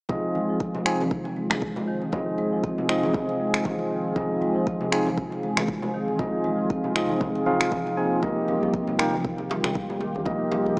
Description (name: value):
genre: afro house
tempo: 118 BPM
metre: 4/4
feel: swing 55% on 16ths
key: F minor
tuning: A4 = 444 Hz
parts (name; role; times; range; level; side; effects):
- warm analog pad; sustained chords; 0.1-10.8 s; Eb3 to Ab4; -30 LUFS; equal; chorus, sidechain pumping
- marimba with soft mallets; arpeggios; 0.1-10.8 s; C3 to Eb4; -30 LUFS; equal; sidechain pumping, low-pass filter, tape echo
- bright tine electric piano; stabs; 0.1-10.8 s; Bb3 to Ab5; -26 LUFS; equal; sidechain pumping, low-pass filter, tape echo
- electronic kick drum; drums; 0.1-10.8 s; none; -30 LUFS; equal; none
- congas; percussion; 0.1-10.6 s; none; -34 LUFS; equal; none
- electronic finger snaps; drums; 0.9-9.7 s; none; -27 LUFS; equal; none
- round analog bass; bass; 8.2-10.8 s; F1 to C2; -43 LUFS; equal; transformer saturation, sidechain pumping
- djembe; percussion; 8.5-10.8 s; none; -34 LUFS; equal; none
room: light reverb, small room ambience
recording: dry, gritty hardware recording, small speaker sound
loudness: -23 LUFS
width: side -31 dB against mid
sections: 0.1-10.8 A section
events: filter sweep on marimba 0.1-10.8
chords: 0.1 Fm7; 8.2 Eb/F